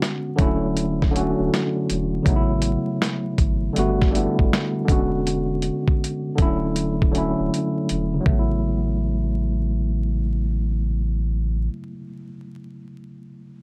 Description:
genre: lo-fi hip hop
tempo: 80 BPM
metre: 4/4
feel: swing 65% on 16ths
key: A major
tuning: A4 = 440 Hz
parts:
  - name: tine electric piano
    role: accompaniment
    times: 0.0-13.6 s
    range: C#3 to F#4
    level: -26 LUFS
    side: equal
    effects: overdrive, cassette tape
  - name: dusty soul sampler-style drum kit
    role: drums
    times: 0.0-8.5 s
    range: hi-hat, kick drum, snare drum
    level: -23 LUFS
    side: equal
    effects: none
  - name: soft dub sub bass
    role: bass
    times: 0.4-11.7 s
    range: D1 to A1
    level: -27 LUFS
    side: equal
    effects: none
room: moderate small room reverb, RT60 0.5 s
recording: vinyl crackle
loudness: -22 LUFS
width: mono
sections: 0.0-8.3 A section; 8.3-11.3 B section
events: none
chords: 0.4 Dmaj9; 2.3 A69; 3.8 Gmaj7; 4.9 E13; 6.4 Dmaj9; 8.3 A69

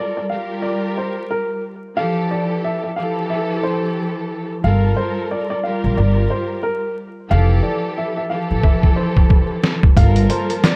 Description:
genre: hip hop, boom-bap hip-hop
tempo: 90 BPM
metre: 4/4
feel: swing 59% on 16ths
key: G dorian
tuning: A4 = 438 Hz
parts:
  - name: warm upright piano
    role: melody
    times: 0.0-10.8 s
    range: Bb4 to F5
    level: -27 LUFS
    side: equal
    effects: high-pass filter, low-pass filter
  - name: dark studio string section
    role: accompaniment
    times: 0.0-10.8 s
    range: E3 to Bb4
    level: -24 LUFS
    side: equal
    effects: cassette tape, high-pass filter, low-pass filter
  - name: upright bass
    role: bass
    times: 4.6-10.3 s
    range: F1 to Bb1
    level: -18 LUFS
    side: equal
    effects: none
  - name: trip hop sampler-style drum kit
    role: drums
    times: 8.6-10.8 s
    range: hi-hat, kick drum, snare drum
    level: -15 LUFS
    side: equal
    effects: none
  - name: clear studio string section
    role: sustained chords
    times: 10.0-10.8 s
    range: F3 to A5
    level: -35 LUFS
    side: equal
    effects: none
room: little or no reverb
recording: vinyl crackle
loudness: -19 LUFS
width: mono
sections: 0.0-10.0 A section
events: drum fill 8.6-10.0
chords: 0.0 Gm9; 2.0 Fmaj9; 4.6 Gm9; 7.3 Fmaj9; 10.0 Gm9

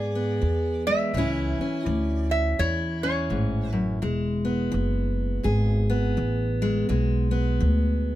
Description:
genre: acoustic country blues, solo or duo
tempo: 83 BPM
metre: 4/4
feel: swing 62% on 8ths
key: E mixolydian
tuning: A4 = 440 Hz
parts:
  - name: lap resonator guitar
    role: melody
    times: 0.0-4.0 s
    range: C#5 to E5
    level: -29 LUFS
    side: right 2 dB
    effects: none
  - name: fingerpicked steel-string acoustic guitar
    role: accompaniment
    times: 0.0-8.2 s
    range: E2 to G#4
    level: -27 LUFS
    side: equal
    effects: none
  - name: upright bass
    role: bass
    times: 0.0-8.2 s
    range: E1 to G#2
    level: -25 LUFS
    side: equal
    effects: none
room: little or no reverb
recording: close, detailed microphones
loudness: -22 LUFS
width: side -14 dB against mid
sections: 0.0-8.2 A section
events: none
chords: 0.0 E; 1.1 A; 4.0 E

